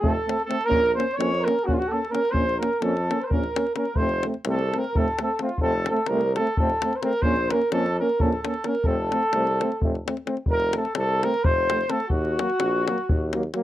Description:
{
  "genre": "balkan folk, Balkan brass band",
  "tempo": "258 BPM (eighths)",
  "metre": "7/8",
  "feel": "straight",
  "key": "F phrygian dominant",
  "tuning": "A4 = 442 Hz",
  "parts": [
    { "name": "mellow flugelhorn", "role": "melody", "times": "0.0-13.5 s", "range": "F4 to Db5", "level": "-26 LUFS", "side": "equal", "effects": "none" },
    { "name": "mellow trumpet", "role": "second line", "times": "0.0-13.5 s", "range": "F4 to Db5", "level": "-28 LUFS", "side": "right 1 dB", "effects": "none" },
    { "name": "clear euphonium", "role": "accompaniment", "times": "0.0-13.6 s", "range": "Gb3 to Bb3", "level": "-30 LUFS", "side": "right 4 dB", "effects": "none" },
    { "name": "warm trombone", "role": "accompaniment", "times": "0.0-13.6 s", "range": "Bb3 to Db4", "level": "-30 LUFS", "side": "left 4 dB", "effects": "none" },
    { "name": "clear tuba", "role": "bass", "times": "0.0-13.5 s", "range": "F1 to F2", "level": "-28 LUFS", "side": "equal", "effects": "none" },
    { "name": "davul", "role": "percussion", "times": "0.0-13.6 s", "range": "none", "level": "-27 LUFS", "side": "left 1 dB", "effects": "none" }
  ],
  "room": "light reverb",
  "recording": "dry, close 1970s-style studio recording",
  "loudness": "-21 LUFS",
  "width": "side -13 dB against mid",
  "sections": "0.0-10.5 A section; 10.5-13.6 B section",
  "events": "none",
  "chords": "0.0 F; 0.7 Bbm; 4.0 F; 7.2 Bbm; 8.9 F; 12.1 Ebm"
}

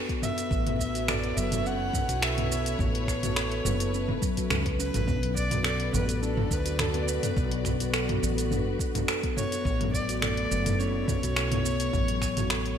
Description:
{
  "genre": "organic downtempo",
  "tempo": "105 BPM",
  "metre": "4/4",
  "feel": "swing 54% on 16ths",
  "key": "unclear",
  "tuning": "A4 = 442 Hz",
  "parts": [
    { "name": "dark chamber string section", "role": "sustained chords", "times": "0.0-12.8 s", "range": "A3 to D5", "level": "-37 LUFS", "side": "left 2 dB", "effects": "sidechain pumping" },
    { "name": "steel tongue drum", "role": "arpeggios", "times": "0.0-12.8 s", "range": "F#3 to B4", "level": "-32 LUFS", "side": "left 2 dB", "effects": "low-pass filter, ping-pong delay" },
    { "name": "deep house drum kit", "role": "drums", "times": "0.1-12.8 s", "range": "finger snaps, hi-hat, shaker, toms", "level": "-30 LUFS", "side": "right 1 dB", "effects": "overdrive, gated reverb" },
    { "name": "electronic kick drum", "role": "drums", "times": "0.1-12.3 s", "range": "none", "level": "-31 LUFS", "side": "equal", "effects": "none" },
    { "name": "warm kamancheh", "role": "melody", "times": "0.2-12.8 s", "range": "A4 to F#5", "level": "-34 LUFS", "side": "right 1 dB", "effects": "ping-pong delay" },
    { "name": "woody fretless electric bass", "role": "bass", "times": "0.5-12.7 s", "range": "F#1 to D2", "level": "-30 LUFS", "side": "equal", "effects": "sidechain pumping" }
  ],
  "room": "moderate lush hall reverb, RT60 2.2 s",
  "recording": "bright 1980s-style digital production",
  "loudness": "-25 LUFS",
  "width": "side -8 dB against mid",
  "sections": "0.0-12.8 A section",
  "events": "none",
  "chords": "0.0 Bm; 0.5 A; 5.1 Bm7; 9.7 A"
}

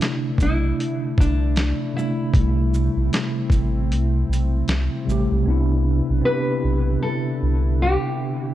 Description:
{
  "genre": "lo-fi hip hop",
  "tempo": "77 BPM",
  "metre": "4/4",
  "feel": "swing 61% on 16ths",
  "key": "C major",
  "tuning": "A4 = 441 Hz",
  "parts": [
    { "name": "mellow tine electric piano", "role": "accompaniment", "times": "0.0-8.5 s", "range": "C3 to G4", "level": "-24 LUFS", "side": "right 1 dB", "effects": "medium stereo tremolo, low-pass filter" },
    { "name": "warbly tape-like pad", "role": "sustained chords", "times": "0.0-8.5 s", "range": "D3 to B4", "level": "-34 LUFS", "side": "left 1 dB", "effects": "chorus, built-in reverb, low-pass filter" },
    { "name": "dusty soul sampler-style drum kit", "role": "drums", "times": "0.0-5.3 s", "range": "hi-hat, kick drum, shaker, snare drum", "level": "-21 LUFS", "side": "equal", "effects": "overdrive" },
    { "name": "nylon-string guitar", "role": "melody", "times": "0.4-8.5 s", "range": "D4 to B4", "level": "-26 LUFS", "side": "left 1 dB", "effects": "low-pass filter, analog delay" },
    { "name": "soft dub sub bass", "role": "bass", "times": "0.4-8.0 s", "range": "A1 to C2", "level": "-20 LUFS", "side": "equal", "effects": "none" }
  ],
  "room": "light reverb",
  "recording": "cassette tape",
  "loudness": "-18 LUFS",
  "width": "side -13 dB against mid",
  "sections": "0.0-5.5 A section; 5.5-8.5 B section",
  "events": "kick muted 3.9-5.5",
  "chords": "0.0 C69; 2.3 C6; 5.5 Cmaj9"
}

